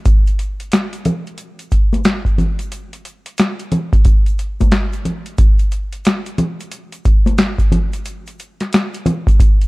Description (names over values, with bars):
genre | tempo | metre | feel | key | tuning
hip hop | 90 BPM | 4/4 | swing 63% on 16ths | none | none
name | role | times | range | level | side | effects
booming analog drum machine | drums | 0.1-9.7 s | hi-hat, kick drum, snare drum | -14 LUFS | equal | overdrive
egg shaker and congas | percussion | 0.1-9.7 s | none | -20 LUFS | equal | none
room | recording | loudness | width
little or no reverb | worn, warbling old tape, cassette tape, warbly pitch drift | -14 LUFS | side -22 dB against mid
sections
0.0-9.7 A section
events
none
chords
none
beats
| 0.06 0.73 1.39 2.06 | 2.73 3.39 4.06 4.73 | 5.39 6.06 6.73 7.39 | 8.06 8.73 9.39